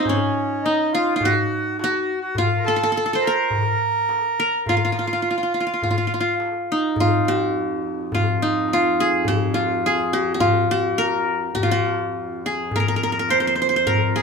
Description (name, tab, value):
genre	Arabic maqam ensemble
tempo	104 BPM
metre	4/4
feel	straight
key	F maqam hijaz, F maqam bayati from 7.0 s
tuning	A4 = 440 Hz
part	qanun	melody	0.0-14.2 s	C4 to C5	-20 LUFS	equal	none
part	accordion	second line	0.0-6.4 s	Db4 to Bb4	-23 LUFS	right 2 dB	none
part	darbuka	percussion	0.1-14.2 s	none	-25 LUFS	left 2 dB	none
part	rich double bass	drone	7.0-14.2 s	F2	-30 LUFS	right 2 dB	none
room	moderate small room ambience, RT60 0.5 s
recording	minimal, uncompressed stereo recording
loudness	-18 LUFS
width	side -5 dB against mid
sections	0.0-7.0 A section; 7.0-14.2 B section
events	none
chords	none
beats	| 0.06 0.64 1.21 1.79 | 2.36 2.94 3.51 4.09 | 4.66 5.24 5.81 6.39 | 6.96 7.54 8.12 8.69 | 9.27 9.84 10.42 10.99 | 11.57 12.14 12.72 13.29 | 13.87